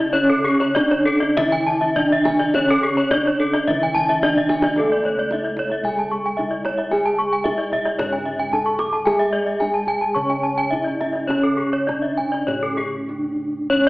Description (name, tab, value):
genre	Balinese gamelan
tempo	95-112 BPM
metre	4/4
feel	straight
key	C# pelog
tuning	A4 = 440 Hz
part	gamelan-type bronze metallophone	melody	0.0-13.9 s	A3-20c to C#5	-23 LUFS	equal	none
part	gamelan-type bronze metallophone	arpeggios	0.0-13.9 s	G#4-30c to C#6	-22 LUFS	left 1 dB	none
part	gamelan-type bossed gongs	bass	0.0-13.9 s	C#2 to A4-20c	-24 LUFS	equal	none
part	gamelan-type bronze metallophone	accompaniment	0.1-13.7 s	C#3 to C#4	-34 LUFS	equal	none
part	gamelan-type bronze metallophone	arpeggios	0.3-13.9 s	A4-20c to D6+20c	-25 LUFS	right 1 dB	none
part	kendang	percussion	0.3-12.9 s	none	-31 LUFS	right 1 dB	none
room	moderate scoring stage reverb, RT60 1.8 s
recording	AM radio sound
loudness	-17 LUFS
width	side -20 dB against mid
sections	0.0-4.8 A section; 4.8-13.7 B section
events	drum fill 4.4-4.8; break 12.8-13.7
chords	none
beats	| 0.13 0.76 1.37 1.97 | 2.55 3.12 3.69 4.24 | 4.78 5.31 5.85 6.38 | 6.92 7.45 7.99 8.52 | 9.06 9.60 10.15 10.71 | 11.29 11.87 12.47 13.08 | 13.71